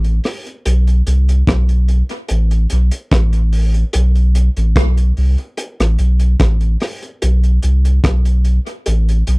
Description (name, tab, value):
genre	dub reggae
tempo	73 BPM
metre	4/4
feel	straight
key	unclear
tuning	A4 = 439 Hz
part	warm sub bass	bass	0.0-9.4 s	A1 to C2	-12 LUFS	equal	none
part	crunchy breakbeat drum kit	drums	0.0-9.4 s	hi-hat, kick drum, rim click	-18 LUFS	equal	none
room	little or no reverb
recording	dry, close 1970s-style studio recording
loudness	-12 LUFS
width	side -27 dB against mid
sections	0.0-9.4 A section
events	kick muted 8.9-9.4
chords	none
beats	| 0.66 1.48 2.30 3.12 | 3.94 4.76 5.58 6.40 | 7.22 8.04 8.86